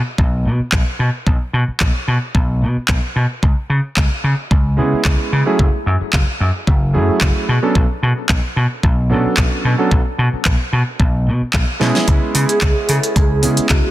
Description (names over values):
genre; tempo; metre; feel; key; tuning
nu-disco, nu disco; 111 BPM; 4/4; swing 54% on 16ths; B dorian; A4 = 439 Hz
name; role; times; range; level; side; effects
vintage slap bass; bass; 0.2-13.8 s; F#1 to C#3; -17 LUFS; equal; none
electronic kick drum; drums; 0.2-13.8 s; none; -15 LUFS; equal; none
pop drum kit; drums; 0.7-13.8 s; handclaps, hi-hat, snare drum; -21 LUFS; equal; none
warm electric grand piano; accompaniment; 4.8-13.9 s; F#3 to A4; -19 LUFS; right 2 dB; sidechain pumping, ping-pong delay
vibraphone with medium mallets; melody; 12.5-13.9 s; F#4 to A4; -20 LUFS; right 2 dB; digital delay
room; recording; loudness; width
light reverb; dense, heavily limited modern master; -14 LUFS; side -15 dB against mid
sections
0.0-13.9 A section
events
drum fill 11.8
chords
0.0 N.C.; 3.4 C#m7; 5.6 F#m7; 7.5 Bm7; 12.1 C#m7